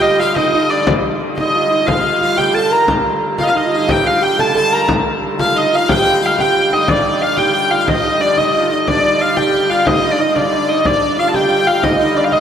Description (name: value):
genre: medieval dance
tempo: 120 BPM (dotted quarters)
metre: 6/8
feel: straight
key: unclear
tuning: A4 = 440 Hz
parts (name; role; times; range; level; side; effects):
- rich hurdy-gurdy; melody; 0.0-12.4 s; D5 to Bb5; -15 LUFS; equal; none
- bright fiddle; second line; 0.0-12.4 s; D5 to Bb5; -22 LUFS; left 4 dB; none
- clear alto saxophone; second line; 0.0-12.4 s; D4 to Bb4; -18 LUFS; right 3 dB; none
- rich hurdy-gurdy; drone; 0.0-12.4 s; G2 to D3; -24 LUFS; right 1 dB; none
- frame drum; percussion; 0.2-12.4 s; none; -22 LUFS; left 3 dB; none
room: wet cathedral reverb, RT60 4.7 s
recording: in a vast, echoing space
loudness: -12 LUFS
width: side -8 dB against mid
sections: 0.0-6.9 A section; 6.9-12.4 B section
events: speeding up 0.0-12.4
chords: none